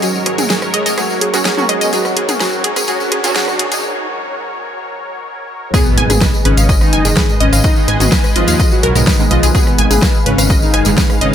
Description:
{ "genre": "melodic techno", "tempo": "126 BPM", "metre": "4/4", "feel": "straight", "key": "G# dorian", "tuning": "A4 = 440 Hz", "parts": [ { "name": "soft supersaw", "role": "melody", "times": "0.0-11.3 s", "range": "B2 to G#4", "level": "-20 LUFS", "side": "left 1 dB", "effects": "sidechain pumping, dub echo" }, { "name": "sweeping resonant pad", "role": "sustained chords", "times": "0.0-11.3 s", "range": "G#2 to E#5", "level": "-23 LUFS", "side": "left 1 dB", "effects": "chorus, sidechain pumping" }, { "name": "wide unison pluck", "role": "arpeggios", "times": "0.0-11.2 s", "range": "F#4 to G#5", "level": "-20 LUFS", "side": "right 1 dB", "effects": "sidechain pumping, digital delay" }, { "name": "synth brass stab", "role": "stabs", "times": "0.0-3.8, 7.0-11.3 s", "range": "G#2 to F#4", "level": "-23 LUFS", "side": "right 4 dB", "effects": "chorus, sidechain pumping, digital delay" }, { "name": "analog drone", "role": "drone", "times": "0.0-11.3 s", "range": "G#2 to D#3", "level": "-34 LUFS", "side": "equal", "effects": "none" }, { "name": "deep house drum kit", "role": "drums", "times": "0.0-11.3 s", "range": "hi-hat, rim click, snare drum, toms", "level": "-19 LUFS", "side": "equal", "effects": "overdrive" }, { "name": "tambourine", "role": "percussion", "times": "0.0-11.2 s", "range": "none", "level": "-22 LUFS", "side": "left 3 dB", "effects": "none" }, { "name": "riser and impact", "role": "sound effects", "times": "0.1-7.6 s", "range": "none", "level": "-24 LUFS", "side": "equal", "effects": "none" }, { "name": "electronic kick drum", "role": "drums", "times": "5.7-11.1 s", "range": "none", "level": "-14 LUFS", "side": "equal", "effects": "overdrive" }, { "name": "dark detuned saw bass", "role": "bass", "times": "6.0-11.3 s", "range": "F#1 to D#2", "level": "-15 LUFS", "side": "equal", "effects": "sidechain pumping" } ], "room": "light reverb, digital ambience", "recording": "high-pass filter", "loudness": "-11 LUFS", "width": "side -9 dB against mid", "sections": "0.0-5.7 A section; 5.7-11.3 B section", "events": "build-up 0.0-5.7; filter sweep on supersaw synth 0.0-5.7; filter sweep 0.0-5.7; riser 0.1-3.8; break 3.8-5.7; drop 5.7-11.3; impact 5.7-7.6", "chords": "0.0 F#add9/G#; 5.7 G#m" }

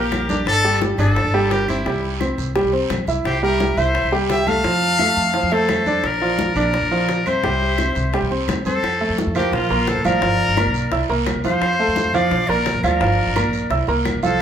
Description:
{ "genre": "latin, Cuban son and guajira", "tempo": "172 BPM", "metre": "4/4", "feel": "straight", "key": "unclear", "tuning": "A4 = 442 Hz", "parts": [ { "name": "brilliant trumpet", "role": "melody", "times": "0.0-14.4 s", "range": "E4 to F5", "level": "-22 LUFS", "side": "left 1 dB", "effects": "tape echo" }, { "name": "breathy bright jazz flute", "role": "second line", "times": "0.0-14.4 s", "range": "G4 to A5", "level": "-27 LUFS", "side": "left 4 dB", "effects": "none" }, { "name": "clear baby grand piano", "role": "arpeggios", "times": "0.0-14.4 s", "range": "F3 to E6", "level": "-20 LUFS", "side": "right 2 dB", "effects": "none" }, { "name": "upright bass", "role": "bass", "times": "0.0-14.4 s", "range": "G1 to F2", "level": "-24 LUFS", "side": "equal", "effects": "none" }, { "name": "bongos", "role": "percussion", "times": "0.1-14.2 s", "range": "none", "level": "-29 LUFS", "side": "left 4 dB", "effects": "none" }, { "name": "claves", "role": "percussion", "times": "0.1-14.4 s", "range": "none", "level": "-35 LUFS", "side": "left 1 dB", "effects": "none" }, { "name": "congas", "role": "percussion", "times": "0.1-14.4 s", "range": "none", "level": "-30 LUFS", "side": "left 2 dB", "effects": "none" }, { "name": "guiro", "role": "percussion", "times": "0.1-14.4 s", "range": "none", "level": "-35 LUFS", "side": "right 6 dB", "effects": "none" } ], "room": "moderate large studio reverb, RT60 0.9 s", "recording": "band playing live in one room", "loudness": "-16 LUFS", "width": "side -9 dB against mid", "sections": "0.0-8.8 A section; 8.8-14.4 B section", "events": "none", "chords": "0.5 Gsus2; 1.9 C; 4.6 F; 6.0 Bb; 7.4 C; 8.8 F; 9.5 Bb5; 10.2 Gm7; 10.9 C7; 11.6 F; 12.3 Bb; 13.0 Gm7; 13.7 C7" }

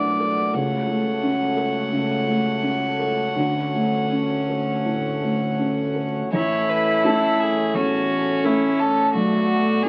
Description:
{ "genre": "neoclassical piano and strings", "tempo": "84 BPM", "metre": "4/4", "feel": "uneven beats, rubato", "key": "unclear", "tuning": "A4 = 438 Hz", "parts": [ { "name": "rich violin", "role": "melody", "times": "0.0-9.9 s", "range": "E4 to F#5", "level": "-28 LUFS", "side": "equal", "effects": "none" }, { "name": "rich cello", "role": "second line", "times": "0.0-9.9 s", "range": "A3 to E4", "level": "-27 LUFS", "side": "equal", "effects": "none" }, { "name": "felt-muted upright piano", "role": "accompaniment", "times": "0.0-9.9 s", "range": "A1 to A4", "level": "-28 LUFS", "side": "equal", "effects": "none" }, { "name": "pedal harmonium", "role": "sustained chords", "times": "0.0-9.9 s", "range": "E3 to G#5", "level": "-29 LUFS", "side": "equal", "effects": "none" }, { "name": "warm double bass", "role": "bass", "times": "0.0-9.9 s", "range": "A1 to D2", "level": "-34 LUFS", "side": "equal", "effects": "none" } ], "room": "moderate studio reverb, RT60 0.7 s", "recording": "very old 78 rpm record, vinyl crackle", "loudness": "-22 LUFS", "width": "mono", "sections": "0.0-6.3 A section; 6.3-9.9 B section", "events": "none", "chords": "0.0 Bm7; 0.5 F#m/C#; 3.4 Dmaj7; 6.3 Amaj7; 9.1 Bm7" }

